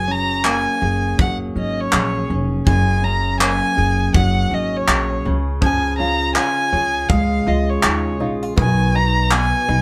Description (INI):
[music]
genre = acoustic pop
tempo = 81 BPM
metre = 4/4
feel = swing 60% on 16ths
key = F# major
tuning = A4 = 439 Hz
[part]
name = rich violin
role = melody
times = 0.0-9.8 s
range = C#5 to A#5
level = -23 LUFS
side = equal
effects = none
[part]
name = fingerpicked steel-string acoustic guitar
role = accompaniment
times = 0.0-9.8 s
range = F#2 to B4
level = -25 LUFS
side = equal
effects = none
[part]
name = open-back banjo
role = arpeggios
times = 0.0-0.3, 5.6-9.8 s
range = D#3 to F#4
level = -34 LUFS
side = equal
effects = none
[part]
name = upright bass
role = bass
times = 0.0-9.8 s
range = E#1 to D#2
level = -23 LUFS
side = equal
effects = none
[part]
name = modern studio drum kit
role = drums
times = 0.4-9.5 s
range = handclaps, kick drum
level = -21 LUFS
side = equal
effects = none
[sound]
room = moderate studio reverb, RT60 0.6 s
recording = band playing live in one room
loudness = -18 LUFS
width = mono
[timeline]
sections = 0.0-9.8 A section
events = none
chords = 0.0 F#add9; 5.3 C#; 8.6 B